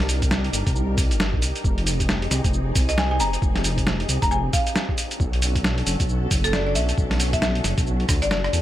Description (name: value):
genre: UK garage, two-step garage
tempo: 135 BPM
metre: 4/4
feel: swing 60% on 16ths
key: unclear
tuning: A4 = 438 Hz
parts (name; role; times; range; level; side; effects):
- soft string machine; sustained chords; 0.0-8.6 s; C4 to Bb4; -31 LUFS; left 1 dB; ensemble chorus, sidechain pumping
- dark detuned saw bass; bass; 0.0-8.6 s; F1 to E2; -24 LUFS; equal; none
- boom bap sampler-style drum kit; drums; 0.0-8.6 s; hi-hat, rim click, shaker, snare drum; -25 LUFS; equal; none
- electronic kick drum; drums; 0.2-8.2 s; none; -24 LUFS; equal; none
- buzzing marimba with hard mallets; melody; 2.9-8.5 s; A4 to A#5; -26 LUFS; equal; ping-pong delay
room: little or no reverb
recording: none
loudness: -19 LUFS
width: side -13 dB against mid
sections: 0.0-8.6 A section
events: drum fill 8.1-8.6; kick drops out 8.3-8.6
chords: 0.0 Cm9; 1.6 Fm9; 5.0 Bm9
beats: 0.31 0.76 1.20 | 1.64 2.09 2.53 2.98 | 3.42 3.87 4.31 4.75 | 5.20 5.64 6.09 6.53 | 6.98 7.42 7.87 8.31